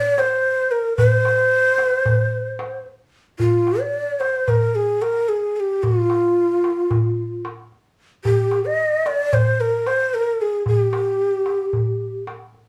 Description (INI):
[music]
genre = Turkish makam ensemble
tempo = 223 BPM (eighths)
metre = 9/8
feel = straight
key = C makam ussak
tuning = A4 = 440 Hz
[part]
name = breathy mellow shakuhachi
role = melody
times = 0.0-12.2 s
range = F4 to Eb5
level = -21 LUFS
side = equal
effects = none
[part]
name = darbuka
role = percussion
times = 0.2-12.6 s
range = none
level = -24 LUFS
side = equal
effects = none
[sound]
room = light reverb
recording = studio ambience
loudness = -20 LUFS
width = mono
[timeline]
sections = 0.0-3.4 A section; 3.4-12.7 B section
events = none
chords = none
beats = 0.17 0.44 0.71 | 0.98 1.25 1.52 1.79 2.06 2.32 2.59 2.86 3.13 | 3.40 3.67 3.94 4.21 4.47 4.75 5.01 5.28 5.55 | 5.82 6.09 6.36 6.63 6.90 7.17 7.43 7.70 7.97 | 8.24 8.51 8.78 9.05 9.32 9.59 9.86 10.12 10.39 | 10.66 10.93 11.20 11.47 11.74 12.01 12.28 12.54